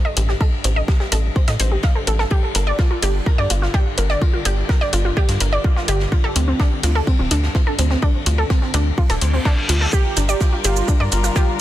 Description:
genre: melodic techno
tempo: 126 BPM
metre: 4/4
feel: straight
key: G minor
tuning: A4 = 440 Hz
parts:
  - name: wide unison pluck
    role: arpeggios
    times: 0.0-11.5 s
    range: C4 to F5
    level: -23 LUFS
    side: right 1 dB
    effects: sidechain pumping, digital delay
  - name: bowed-like drone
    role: drone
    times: 0.1-11.6 s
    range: G2 to D3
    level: -32 LUFS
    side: equal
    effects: built-in reverb, sidechain pumping
  - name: tight sequencer bass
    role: bass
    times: 0.2-11.3 s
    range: D1 to A2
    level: -19 LUFS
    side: equal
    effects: sidechain pumping
  - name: electronic hi-hat and shaker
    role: drums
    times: 0.2-11.5 s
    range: none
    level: -22 LUFS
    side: left 1 dB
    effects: studio reverb
  - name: jazz brush drum kit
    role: drums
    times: 0.2-11.5 s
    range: hi-hat, ride cymbal, snare drum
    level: -31 LUFS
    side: left 3 dB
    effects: sidechain pumping on cymbals, high-pass filter on cymbals, studio reverb, sidechain pumping on hats, high-pass filter on hats, soft clipping on snare, high-pass filter on snare, high-pass filter on room
  - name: electronic kick drum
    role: drums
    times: 0.4-11.5 s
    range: none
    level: -17 LUFS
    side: equal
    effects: studio reverb
  - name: reverse cymbal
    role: sound effects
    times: 9.2-9.9 s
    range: none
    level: -28 LUFS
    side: left 1 dB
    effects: none
  - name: analog synth brass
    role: melody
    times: 9.9-11.5 s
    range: F4 to G4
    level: -26 LUFS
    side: right 4 dB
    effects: chorus, sidechain pumping
  - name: muted chamber string section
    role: sustained chords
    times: 9.9-11.6 s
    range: G3 to Bb4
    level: -28 LUFS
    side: left 3 dB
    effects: sidechain pumping
room: little or no reverb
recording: dense, heavily limited modern master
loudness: -16 LUFS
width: side -13 dB against mid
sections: 0.0-11.6 A section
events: reverse cymbal 9.2-9.9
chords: 0.0 Am7; 2.3 G7(no3); 6.1 Dm7; 9.9 Gm7

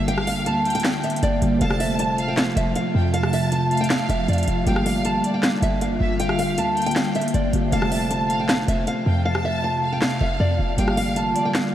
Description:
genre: hip hop, trap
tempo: 157 BPM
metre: 4/4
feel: half-time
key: G dorian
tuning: A4 = 441 Hz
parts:
  - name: nylon-string guitar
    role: melody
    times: 0.0-11.7 s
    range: D5 to A5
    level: -25 LUFS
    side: right 1 dB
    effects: low-pass filter, diffuse ambient delay
  - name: warm studio violin section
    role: second line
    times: 0.0-11.5 s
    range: D5 to A5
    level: -30 LUFS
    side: equal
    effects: diffuse ambient delay
  - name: Celtic harp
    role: accompaniment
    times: 0.0-11.7 s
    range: C3 to A4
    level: -27 LUFS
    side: equal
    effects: low-pass filter
  - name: glassy FM pad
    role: sustained chords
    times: 0.0-11.7 s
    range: C3 to F4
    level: -26 LUFS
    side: equal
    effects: ensemble chorus, built-in reverb, phaser
  - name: short 808-style bass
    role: bass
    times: 0.0-11.3 s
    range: F1 to F2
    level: -24 LUFS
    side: equal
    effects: none
  - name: trap drum kit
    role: drums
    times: 0.1-11.6 s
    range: handclaps, hi-hat, rim click, snare drum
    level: -27 LUFS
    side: equal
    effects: overdrive
room: moderate huge ambient reverb, RT60 4.5 s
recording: dreamy mix soaked in reverb, vinyl crackle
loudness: -19 LUFS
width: side -11 dB against mid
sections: 0.0-4.7 A section; 4.7-11.7 A section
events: hi-hats muted 9.3-10.8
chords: 0.0 Gm7; 1.6 F; 4.7 Gm7; 7.7 F; 10.8 Gm7

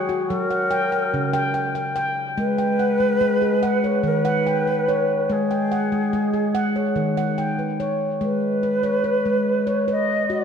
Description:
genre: world meditative, meditative tuned percussion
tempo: 144 BPM (eighths)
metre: 7/8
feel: straight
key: unclear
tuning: A4 = 441 Hz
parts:
  - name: mellow Native American-style cedar flute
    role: melody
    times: 0.0-10.4 s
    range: G#4 to D#5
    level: -23 LUFS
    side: right 1 dB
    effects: diffuse ambient delay
  - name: handpan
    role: arpeggios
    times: 0.0-10.4 s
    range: C#3 to G5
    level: -21 LUFS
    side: left 1 dB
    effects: diffuse ambient delay
room: wet echo chamber reverb, RT60 1.8 s, studio ambience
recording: none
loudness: -19 LUFS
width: side -7 dB against mid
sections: 0.0-8.2 A section; 8.2-10.4 B section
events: none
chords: 0.0 F#; 2.4 G#m

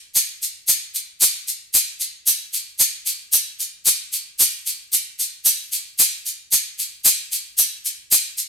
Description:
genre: bossa nova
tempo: 113 BPM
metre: 4/4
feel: straight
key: none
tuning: none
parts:
  - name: egg shaker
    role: percussion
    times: 0.2-8.5 s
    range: none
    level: -15 LUFS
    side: equal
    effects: none
room: moderate studio reverb, RT60 0.8 s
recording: band playing live in one room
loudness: -16 LUFS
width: side -6 dB against mid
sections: 0.0-2.8 A section; 2.8-8.5 B section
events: none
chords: none

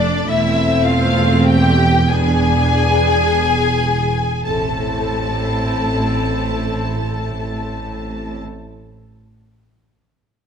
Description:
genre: classical, slow romantic movement for string orchestra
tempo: 23-36 BPM (dotted quarters)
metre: 6/8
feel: rubato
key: A minor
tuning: A4 = 440 Hz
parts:
  - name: dark studio violin section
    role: melody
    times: 0.0-8.4 s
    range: D5 to A5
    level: -21 LUFS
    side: left 3 dB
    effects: none
  - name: dark studio violin section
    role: second line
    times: 0.0-8.4 s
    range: D4 to A4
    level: -22 LUFS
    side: left 3 dB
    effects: none
  - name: rich studio viola section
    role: accompaniment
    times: 0.0-8.4 s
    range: A3 to E4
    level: -22 LUFS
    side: right 1 dB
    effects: none
  - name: rich studio double bass section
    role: bass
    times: 0.0-8.4 s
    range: E1 to A1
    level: -21 LUFS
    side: right 3 dB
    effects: none
  - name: warm studio cello section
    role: bass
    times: 0.0-8.4 s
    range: E2 to A2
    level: -22 LUFS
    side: right 2 dB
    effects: none
room: moderate scoring stage reverb, RT60 1.8 s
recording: close, detailed microphones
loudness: -14 LUFS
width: side -7 dB against mid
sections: 0.0-4.5 A section; 4.5-8.9 B section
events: slowing down 0.0-4.5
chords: 0.3 Am/E; 2.1 E7; 4.5 Am

